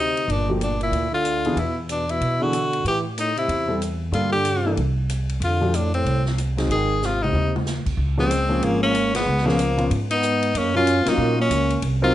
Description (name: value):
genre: jazz, small-group swing and bop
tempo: 187 BPM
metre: 4/4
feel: swing 62% on 8ths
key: Db major from 8.0 s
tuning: A4 = 440 Hz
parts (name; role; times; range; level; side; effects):
- edgy tenor saxophone; melody; 0.0-12.1 s; Bb3 to Ab4; -23 LUFS; left 2 dB; plate reverb
- breathy trombone; second line; 0.0-12.1 s; A2 to Db4; -27 LUFS; right 3 dB; none
- upright bass; bass; 0.0-12.1 s; G1 to B2; -24 LUFS; equal; none
- swinging big-band drum kit; drums; 0.2-11.9 s; crash cymbal, hi-hat, kick drum, ride cymbal, snare drum, toms; -32 LUFS; equal; none
- warm grand piano; accompaniment; 0.5-12.1 s; E3 to Bb4; -25 LUFS; left 1 dB; none
room: light reverb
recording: nothing above 11.0 kHz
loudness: -19 LUFS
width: side -13 dB against mid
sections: 0.0-8.0 A section; 8.0-12.1 B section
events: drum fill 7.0-7.7; band accent 9.1, 11.0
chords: 0.3 Gm7; 1.6 E7(no3); 2.9 Am; 4.1 Gm9; 4.8 N.C.; 5.4 F6; 6.7 Ab; 8.0 Db6; 9.3 Db7; 10.5 Gbmaj7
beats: | 0.29 0.61 0.93 1.25 | 1.57 1.89 2.21 2.53 | 2.85 3.17 3.49 3.81 | 4.13 4.46 4.78 5.10 | 5.42 5.74 6.06 6.38 | 6.70 7.02 7.34 7.66 | 7.98 8.30 8.62 8.94 | 9.26 9.58 9.90 10.22 | 10.54 10.86 11.18 11.51 | 11.82